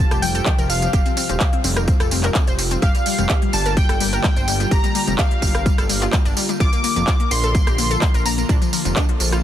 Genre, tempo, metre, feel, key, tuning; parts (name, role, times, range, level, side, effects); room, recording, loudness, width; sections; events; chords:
progressive house; 127 BPM; 4/4; straight; G minor; A4 = 438 Hz
plucky unison lead; melody; 0.0-8.5 s; F5 to D6; -26 LUFS; equal; lush chorus, cassette tape, tape echo
soft round pluck; second line; 0.0-8.5 s; F5 to D6; -34 LUFS; left 1 dB
airy breathy pad; sustained chords; 0.1-9.4 s; C3 to Bb4; -28 LUFS; equal; chorus, sidechain pumping
analog pluck; arpeggios; 0.0-9.4 s; F3 to C5; -26 LUFS; left 7 dB; chorus, sidechain pumping, tape echo
fat analog bass; bass; 0.0-9.4 s; Eb1 to Bb1; -23 LUFS; equal; sidechain pumping
pop drum kit; drums; 0.1-9.4 s; handclaps, hi-hat, rim click, tambourine; -24 LUFS; right 1 dB
electronic kick drum; drums; 0.5-9.1 s; -18 LUFS; equal; overdrive
little or no reverb; dense, heavily limited modern master; -16 LUFS; side -11 dB against mid
0.0-9.4 A section
0.0 Fsus2; 2.8 Gm7; 6.6 Bb